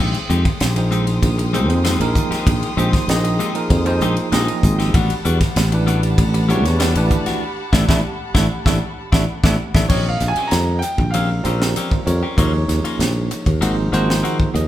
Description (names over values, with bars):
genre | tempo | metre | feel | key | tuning
electric jazz fusion | 97 BPM | 4/4 | straight | unclear | A4 = 440 Hz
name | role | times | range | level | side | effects
dark chamber string section | sustained chords | 0.0-9.9 s | G4 to Eb6 | -28 LUFS | left 2 dB | none
clean electric guitar | stabs | 0.0-14.6 s | Eb3 to G4 | -25 LUFS | left 5 dB | none
sustaining fretless electric bass | bass | 0.0-14.7 s | Ab1 to F2 | -19 LUFS | equal | none
crisp fusion drum kit | drums | 0.1-14.7 s | crash cymbal, hi-hat, kick drum, ride cymbal, snare drum | -20 LUFS | equal | none
bell-like tine electric piano | accompaniment | 0.8-14.7 s | E3 to F5 | -24 LUFS | right 3 dB | medium stereo tremolo
clear grand piano | melody | 9.9-12.0 s | Db5 to Bb5 | -24 LUFS | equal | none
room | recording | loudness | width
moderate large studio reverb, RT60 1.2 s | band playing live in one room | -15 LUFS | side -13 dB against mid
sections
0.0-9.9 A section; 9.9-14.7 B section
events
band accent 7.4-9.9; tine electric piano fill 8.0-9.9; drum fill 9.6-9.9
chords
0.0 Bb13sus4; 4.9 A13sus4; 9.9 Bbm69; 12.4 Ebm9; 13.6 Ab9